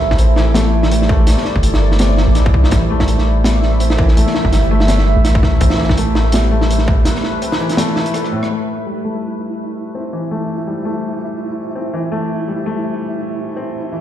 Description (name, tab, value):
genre	half-time drum and bass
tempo	166 BPM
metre	4/4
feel	swing 56% on 16ths, half-time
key	A minor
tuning	A4 = 440 Hz
part	deep dark ambient pad	sustained chords	0.0-14.0 s	A3 to E5	-22 LUFS	right 2 dB	chorus, built-in reverb, sidechain pumping
part	felt-muted upright piano	arpeggios	0.0-14.0 s	A2 to A4	-21 LUFS	left 3 dB	low-pass filter, ping-pong delay
part	long sustained 808-style bass	bass	0.0-7.1 s	G1 to C2	-14 LUFS	equal	tube saturation
part	crunchy breakbeat drum kit	drums	0.1-8.5 s	hi-hat, rim click, shaker, snare drum	-20 LUFS	right 1 dB	low-pass filter on snare, low-pass filter on hats, low-pass filter on perc, low-pass filter on room
part	electronic kick drum	drums	0.1-7.0 s	none	-16 LUFS	equal	distortion
part	flickering grainy texture	texture	8.8-14.0 s	E4	-26 LUFS	right 4 dB	built-in reverb
room	little or no reverb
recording	played on a big sound system in a bare room, large studio reverb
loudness	-13 LUFS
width	side -11 dB against mid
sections	0.0-8.5 A section; 8.5-14.0 B section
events	drop 0.0-8.5; break 7.1-8.5; drum fill 8.1-8.5; band accent 8.4; filter sweep on ambient pad 8.5-14.0; filter sweep on felt piano 8.5-14.0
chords	0.0 A5